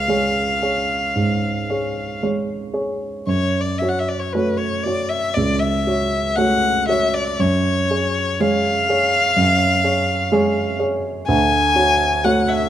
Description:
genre	classical, romantic duo for violin and grand piano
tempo	56-64 BPM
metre	4/4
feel	rubato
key	unclear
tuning	A4 = 440 Hz
part	warm violin	melody	0.0-12.7 s	B4 to G#5	-19 LUFS	left 2 dB	none
part	dark grand piano	accompaniment	0.0-12.7 s	C#2 to C#5	-19 LUFS	right 2 dB	none
room	light reverb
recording	close, detailed microphones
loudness	-16 LUFS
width	side -11 dB against mid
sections	0.0-12.7 A section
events	none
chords	0.0 C#; 3.3 F#m; 7.4 C#/F#; 11.3 Dmaj7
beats	0.08 1.16 2.22 | 3.28 4.34 5.36 6.37 | 7.39 8.40 9.38 10.32 | 11.28 12.24

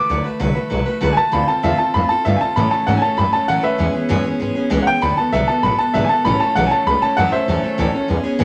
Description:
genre	rockabilly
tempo	195 BPM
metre	4/4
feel	straight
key	A major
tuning	A4 = 440 Hz
part	bright upright piano	melody	0.0-7.9 s	B4 to D6	-20 LUFS	equal	none
part	picked steel-string acoustic guitar	accompaniment	0.0-8.4 s	A2 to B4	-23 LUFS	equal	none
part	upright bass	bass	0.1-8.4 s	G#1 to A2	-24 LUFS	equal	none
room	moderate studio reverb, RT60 0.7 s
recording	none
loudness	-17 LUFS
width	mono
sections	0.0-8.4 A section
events	upright piano solo 0.0-8.4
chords	0.0 D6; 1.3 Dm7; 2.6 A6; 3.8 E6; 5.0 D6; 6.2 A6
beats	| 0.10 0.41 0.72 1.02 | 1.33 1.64 1.95 2.26 | 2.56 2.87 3.18 3.49 | 3.79 4.10 4.41 4.71 | 5.02 5.33 5.64 5.94 | 6.25 6.56 6.86 7.17 | 7.48 7.78 8.09 8.40

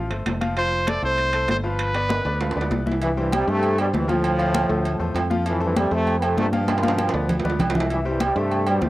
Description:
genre	latin, salsa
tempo	196 BPM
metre	4/4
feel	straight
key	C major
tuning	A4 = 440 Hz
part	bright upright piano	accompaniment	0.0-8.9 s	E3 to F5	-28 LUFS	left 2 dB	cassette tape
part	fingered electric bass	bass	0.0-8.9 s	F1 to G2	-25 LUFS	equal	none
part	congas	percussion	0.1-8.9 s	none	-26 LUFS	left 2 dB	none
part	timbales and agogo bells	percussion	0.1-8.9 s	none	-27 LUFS	right 4 dB	none
part	bright trumpet	melody	0.6-2.7 s	B4 to D5	-23 LUFS	equal	cassette tape
part	brilliant trombone section	melody	3.0-8.9 s	G2 to B3	-24 LUFS	equal	cassette tape
room	light reverb, studio reverb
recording	home recording on cassette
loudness	-19 LUFS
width	side -17 dB against mid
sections	0.0-3.0 A section; 3.0-8.9 B section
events	drum fill 2.1-3.0, 6.7-7.9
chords	0.0 Dm7 (rootless); 1.8 G7; 3.0 C; 4.2 Dm7; 5.5 F; 6.7 G7; 7.9 C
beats	0.26 | 0.57 0.87 1.18 1.49 | 1.79 2.10 2.41 2.71 | 3.02 3.32 3.63 3.94 | 4.24 4.55 4.85 5.16 | 5.46 5.77 6.07 6.38 | 6.68 6.99 7.29 7.60 | 7.91 8.21 8.52 8.82

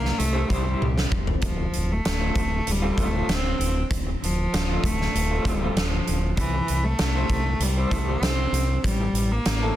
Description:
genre	quiet-loud alternative rock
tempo	97 BPM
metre	4/4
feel	straight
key	D minor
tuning	A4 = 442 Hz
part	bright cello	melody	0.0-9.8 s	E3 to C4	-27 LUFS	equal	plate reverb, digital delay
part	growling fingered electric bass	bass	0.0-9.7 s	D1 to C2	-25 LUFS	equal	overdrive
part	huge arena drum kit	drums	0.1-9.6 s	hi-hat, kick drum, snare drum, toms	-26 LUFS	equal	none
part	electric guitar through a small old amp	arpeggios	0.2-9.8 s	D3 to C5	-32 LUFS	equal	tremolo, plate reverb, digital delay
room	light reverb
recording	dense, heavily limited modern master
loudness	-21 LUFS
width	side -13 dB against mid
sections	0.0-9.8 A section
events	drum fill 0.8-1.4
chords	0.0 C; 1.4 Dm7; 6.4 C; 8.9 Am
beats	0.19 0.81 | 1.43 2.05 2.67 3.29 | 3.91 4.53 5.14 5.76 | 6.38 7.00 7.62 8.24 | 8.86 9.47

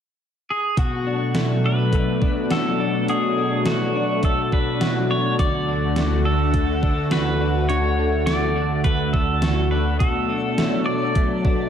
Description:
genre	dream pop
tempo	104 BPM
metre	4/4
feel	straight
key	B minor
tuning	A4 = 440 Hz
part	pedal steel guitar	melody	0.5-11.7 s	F#4 to D5	-25 LUFS	equal	wide subtle chorus, ping-pong delay
part	lush unison pad	sustained chords	0.8-11.7 s	D2 to F#4	-22 LUFS	equal	chorus, phaser
part	direct-recorded clean electric guitar	arpeggios	0.8-11.7 s	B2 to F#4	-26 LUFS	left 3 dB	ensemble chorus, ping-pong delay
part	gated 80s digital drum machine	drums	0.8-11.6 s	hi-hat, kick drum, snare drum	-23 LUFS	equal	gated reverb, gated reverb snare, overdrive
part	twinkling granular texture	texture	10.4-10.9 s	C#5	-37 LUFS	right 5 dB	none
room	wet plate reverb, RT60 1.5 s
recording	dreamy mix soaked in reverb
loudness	-18 LUFS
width	side -8 dB against mid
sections	0.8-11.7 A section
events	none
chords	0.0 N.C.; 0.8 Bm7; 5.4 D; 10.0 Bm7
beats	0.20 | 0.77 1.35 1.93 2.50 | 3.08 3.66 4.24 4.81 | 5.39 5.96 6.54 7.12 | 7.70 8.27 8.85 9.43 | 10.00 10.58 11.16

